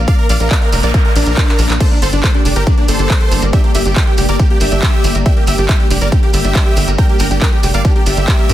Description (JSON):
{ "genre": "uplifting trance", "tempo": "139 BPM", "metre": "4/4", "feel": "straight", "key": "unclear", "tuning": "A4 = 438 Hz", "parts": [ { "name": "analog string pad", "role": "sustained chords", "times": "0.0-8.5 s", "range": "G3 to F5", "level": "-22 LUFS", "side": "left 1 dB", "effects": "ensemble chorus, sidechain pumping" }, { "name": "tight sequencer bass", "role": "bass", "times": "0.0-8.5 s", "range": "F1 to G2", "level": "-15 LUFS", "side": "equal", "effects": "sidechain pumping" }, { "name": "big supersaw lead", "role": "melody", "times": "0.1-8.5 s", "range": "D4 to G5", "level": "-19 LUFS", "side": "equal", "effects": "sidechain pumping, digital delay" }, { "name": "big-room dance drum kit", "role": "drums", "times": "0.1-8.5 s", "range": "crash cymbal, handclaps, hi-hat", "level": "-22 LUFS", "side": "equal", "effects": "none" }, { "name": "electronic kick drum", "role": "drums", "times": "0.1-8.4 s", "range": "none", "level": "-12 LUFS", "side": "equal", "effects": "none" }, { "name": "shekere", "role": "percussion", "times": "0.1-8.5 s", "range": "none", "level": "-26 LUFS", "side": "right 3 dB", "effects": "none" }, { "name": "noise sweep", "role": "sound effects", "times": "0.4-1.8 s", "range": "none", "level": "-26 LUFS", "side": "right 2 dB", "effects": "none" }, { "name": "analog pluck", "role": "arpeggios", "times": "1.8-8.5 s", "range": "D3 to Bb4", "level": "-25 LUFS", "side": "right 3 dB", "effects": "ensemble chorus, sidechain pumping, digital delay" } ], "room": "little or no reverb", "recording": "dense, heavily limited modern master", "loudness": "-10 LUFS", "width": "side -13 dB against mid", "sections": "0.0-8.5 A section", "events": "noise sweep 0.4-1.8; drum fill 1.5-1.8", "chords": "0.0 Bb; 1.8 Gm", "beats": "| 0.08 0.51 0.94 1.37 | 1.80 2.24 2.67 3.10 | 3.53 3.96 4.39 4.83 | 5.26 5.69 6.12 6.55 | 6.99 7.42 7.85 8.28" }